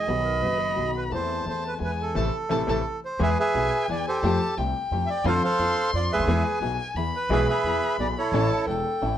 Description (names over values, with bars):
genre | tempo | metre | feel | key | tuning
tango | 175 BPM | 3/4 | rubato | unclear | A4 = 442 Hz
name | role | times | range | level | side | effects
bandoneon | melody | 0.0-8.7 s | E4 to F5 | -26 LUFS | right 3 dB | plate reverb
warm violin | second line | 0.0-9.2 s | G5 to C6 | -31 LUFS | left 5 dB | none
warm baby grand piano | accompaniment | 0.0-9.2 s | E1 to A4 | -29 LUFS | left 3 dB | none
dark chamber string section | stabs | 0.0-9.2 s | A3 to A4 | -36 LUFS | right 1 dB | none
upright bass | bass | 0.0-9.2 s | E1 to F2 | -30 LUFS | right 1 dB | none
warm clarinet | second line | 0.2-2.8, 8.5-9.1 s | F#4 to C#5 | -31 LUFS | right 2 dB | none
room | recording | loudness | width
moderate club reverb, RT60 0.6 s | worn, warbling old tape, cassette tape, warbly pitch drift | -22 LUFS | side -10 dB against mid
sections
0.0-3.2 A section; 3.2-9.2 B section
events
band accent 2.2-3.2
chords
0.1 B; 1.1 Am/E; 1.8 E; 2.2 Am; 3.2 E; 4.2 Fadd9; 5.3 Dm7/F; 6.3 E; 8.3 A